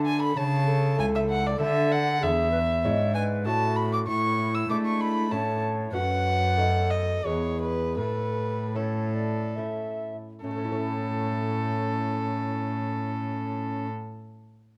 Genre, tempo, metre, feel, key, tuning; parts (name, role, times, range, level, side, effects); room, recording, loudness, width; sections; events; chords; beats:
classical, baroque-style sonata movement with continuo; 68-98 BPM; 3/4; rubato; A major; A4 = 440 Hz
tenor recorder; melody; 0.0-13.9 s; C#4 to E5; -35 LUFS; equal
lute; accompaniment; 0.0-14.2 s; E2 to C#5; -36 LUFS; equal
rich cello; bass; 0.0-13.9 s; C#2 to A3; -31 LUFS; equal
warm violin; second line; 0.1-13.9 s; A4 to E6; -31 LUFS; equal
light reverb; dark, warm production; -27 LUFS; mono
0.0-10.4 A section; 10.4-14.8 B section
slowing down 5.0-10.4
0.4 A/C#; 1.6 D; 2.2 E7; 3.5 A; 4.1 E7/A; 5.3 A; 5.9 F#m; 6.6 B7/F#; 7.3 E; 8.0 A
| 0.37 0.98 1.60 | 2.22 2.84 3.46 | 4.08 4.70 5.32 | 5.94 6.58 7.25 | 7.98 8.76 9.57 | 10.44 11.32 12.20 | 13.09 13.97